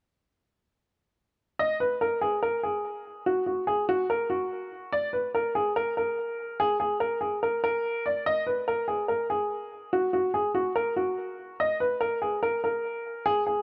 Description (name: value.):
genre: hip hop.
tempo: 144 BPM.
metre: 4/4.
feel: half-time.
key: unclear.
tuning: A4 = 440 Hz.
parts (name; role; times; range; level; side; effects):
warm upright piano; melody; 1.6-13.6 s; Gb4 to Eb5; -28 LUFS; equal; low-pass filter.
room: light reverb, studio ambience.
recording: none.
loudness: -28 LUFS.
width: mono.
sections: 1.6-13.6 A section.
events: none.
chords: none.